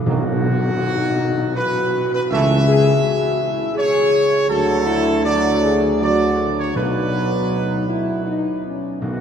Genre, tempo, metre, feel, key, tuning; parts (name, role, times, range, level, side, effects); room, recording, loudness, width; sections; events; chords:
classical, ceremonial fanfare; 80 BPM; 3/4; straight; A4 = 441 Hz
mellow trumpet section; melody; 0.1-9.2 s; F#4 to E5; -22 LUFS; equal
mellow trombone section; sustained chords; 0.1-9.2 s; B2 to A3; -27 LUFS; right 2 dB
mellow tuba; bass; 0.1-9.2 s; B1 to D2; -22 LUFS; right 1 dB
tam-tam; percussion; 0.1-3.0 s; -32 LUFS; left 2 dB
timpani; percussion; 0.1-1.1, 6.8-9.2 s; B2; -26 LUFS; right 1 dB
mellow French horn section; sustained chords; 0.8-9.2 s; B3 to G#4; -20 LUFS; left 1 dB
wet cathedral reverb, RT60 6.2 s; recorded in a church or concert hall; -16 LUFS; side -8 dB against mid
0.1-9.2 A section
band accent 0.1-0.8
0.1 B; 2.3 A/C# (rootless); 4.5 D; 6.8 B